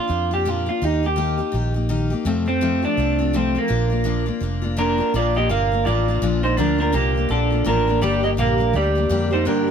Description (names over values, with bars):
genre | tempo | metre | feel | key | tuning
honky-tonk and classic country | 166 BPM | 4/4 | swing 60% on 8ths | Bb major | A4 = 439 Hz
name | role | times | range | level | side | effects
electric guitar through a small old amp | melody | 0.0-9.7 s | Bb3 to F5 | -21 LUFS | right 2 dB | none
picked steel-string acoustic guitar | accompaniment | 0.0-9.7 s | F2 to G4 | -24 LUFS | left 5 dB | none
vintage muted fingered electric bass | bass | 0.1-9.7 s | F1 to G2 | -23 LUFS | right 1 dB | none
room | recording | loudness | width
little or no reverb | none | -18 LUFS | side -7 dB against mid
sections
0.0-5.1 A section; 5.1-9.7 B section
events
none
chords
0.0 Bb; 0.8 Eb; 2.3 F; 3.7 Bb; 8.0 Gm